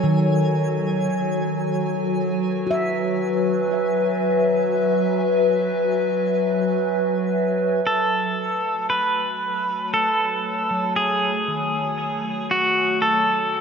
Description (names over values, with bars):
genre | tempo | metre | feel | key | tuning
ambient | 59 BPM | 3/4 | straight | F# dorian | A4 = 440 Hz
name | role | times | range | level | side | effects
warbly tape-like pad | sustained chords | 0.0-13.6 s | F#3 to G#5 | -22 LUFS | left 1 dB | chorus, built-in reverb, phaser
handpan | arpeggios | 0.0-13.6 s | D#3 to E5 | -26 LUFS | equal | diffuse ambient delay
twinkling granular texture | texture | 0.0-7.9 s | G#5 | -42 LUFS | right 2 dB | built-in reverb
pedal steel guitar | melody | 7.9-13.6 s | F#4 to B4 | -20 LUFS | equal | diffuse ambient delay
room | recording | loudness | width
wet cathedral reverb, RT60 5.3 s | in a vast, echoing space | -19 LUFS | side -6 dB against mid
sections
0.0-7.9 A section; 7.9-13.6 B section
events
fade-out on synth texture 0.0-7.9; fade-in on ambient pad 7.9-13.6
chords
0.0 F#madd9; 1.7 E; 7.9 F#madd9